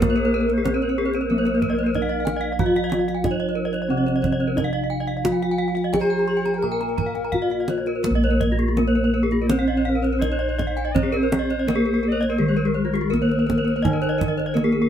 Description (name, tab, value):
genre	Balinese gamelan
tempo	83-93 BPM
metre	4/4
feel	straight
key	Bb slendro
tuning	A4 = 440 Hz
part	gamelan-type bronze metallophone	melody	0.0-14.9 s	Ab3-45c to Bb4	-22 LUFS	equal	none
part	tenor recorder	second line	0.0-14.8 s	F4+22c to Eb5-34c	-31 LUFS	left 4 dB	none
part	gamelan-type bronze metallophone	accompaniment	0.0-8.1, 13.8-14.9 s	C3+30c to Bb3	-28 LUFS	right 2 dB	none
part	gamelan-type bronze metallophone	arpeggios	0.0-14.8 s	F4+25c to Bb5	-28 LUFS	left 3 dB	none
part	gamelan-type bossed gongs	bass	0.0-14.9 s	Bb1 to Bb4	-28 LUFS	equal	none
part	kendang	percussion	0.0-14.7 s	none	-27 LUFS	right 3 dB	none
part	gamelan-type bronze metallophone	arpeggios	0.1-14.9 s	F4+25c to C6+30c	-28 LUFS	right 2 dB	none
room	moderate studio reverb, RT60 0.6 s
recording	band playing live in one room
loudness	-19 LUFS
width	side -9 dB against mid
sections	0.0-8.1 A section; 8.1-14.9 B section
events	none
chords	none